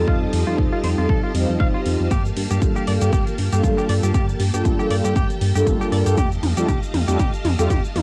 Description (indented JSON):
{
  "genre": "nu-disco, nu disco",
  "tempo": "118 BPM",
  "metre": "4/4",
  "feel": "swing 56% on 16ths",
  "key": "G minor",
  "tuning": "A4 = 435 Hz",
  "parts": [
    { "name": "mellow synth brass", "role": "accompaniment", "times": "0.0-7.7 s", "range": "G3 to C5", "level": "-26 LUFS", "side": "equal", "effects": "chorus, cassette tape, tape echo" },
    { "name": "string machine, full ensemble", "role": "sustained chords", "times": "0.0-8.0 s", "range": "Bb3 to A5", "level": "-32 LUFS", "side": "equal", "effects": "ensemble chorus, sidechain pumping, cassette tape" },
    { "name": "chorused synth bass", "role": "bass", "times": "0.0-8.0 s", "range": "F1 to G2", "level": "-24 LUFS", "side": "equal", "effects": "sidechain pumping" },
    { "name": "direct-recorded clean electric guitar", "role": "riff", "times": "0.1-7.8 s", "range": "F4 to F5", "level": "-31 LUFS", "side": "equal", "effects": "lush chorus, low-pass filter, cassette tape" },
    { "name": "electronic kick drum", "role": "drums", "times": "0.1-7.8 s", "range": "none", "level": "-24 LUFS", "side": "equal", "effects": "studio reverb, cassette tape" },
    { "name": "pop drum kit", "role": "drums", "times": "0.3-8.0 s", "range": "hi-hat, shaker, toms", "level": "-31 LUFS", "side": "equal", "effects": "studio reverb, cassette tape" }
  ],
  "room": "moderate booth ambience, RT60 0.2 s",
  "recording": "home recording on cassette",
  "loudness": "-20 LUFS",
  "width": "mono",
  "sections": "0.0-8.0 A section",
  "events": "build-up 0.0-8.0; filter sweep on analog polysynth 0.0-8.0; drum fill 2.1-8.0",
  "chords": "0.0 F9; 2.1 Gm9; 6.2 F9"
}